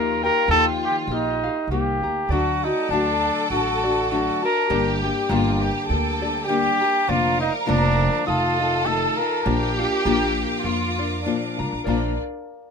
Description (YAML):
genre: mexican folk, mariachi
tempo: 100 BPM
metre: 4/4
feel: swing 55% on 8ths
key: Bb major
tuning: A4 = 443 Hz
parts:
  - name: warm trumpet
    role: melody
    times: 0.0-9.8 s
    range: D4 to Bb4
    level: -22 LUFS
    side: equal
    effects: none
  - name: dark studio violin section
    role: second line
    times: 0.0-12.2 s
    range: D4 to Bb4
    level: -27 LUFS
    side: equal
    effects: none
  - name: nylon-string guitar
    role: accompaniment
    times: 0.0-12.1 s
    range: F2 to G4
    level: -26 LUFS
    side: left 4 dB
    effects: none
  - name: concert harp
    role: arpeggios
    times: 0.0-12.2 s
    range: Bb4 to D7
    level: -32 LUFS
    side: left 4 dB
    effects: none
  - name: upright bass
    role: bass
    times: 0.0-12.2 s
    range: F1 to F2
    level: -26 LUFS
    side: right 2 dB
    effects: none
  - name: clear studio violin section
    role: sustained chords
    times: 2.3-12.2 s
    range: Bb3 to Eb6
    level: -31 LUFS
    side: right 1 dB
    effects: none
room: light reverb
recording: minimal, uncompressed stereo recording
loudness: -19 LUFS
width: side -6 dB against mid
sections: 0.0-11.9 A section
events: none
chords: 0.0 Ebadd9; 2.3 D; 4.7 Gm; 7.1 Bb/F; 8.3 F7; 9.5 Bb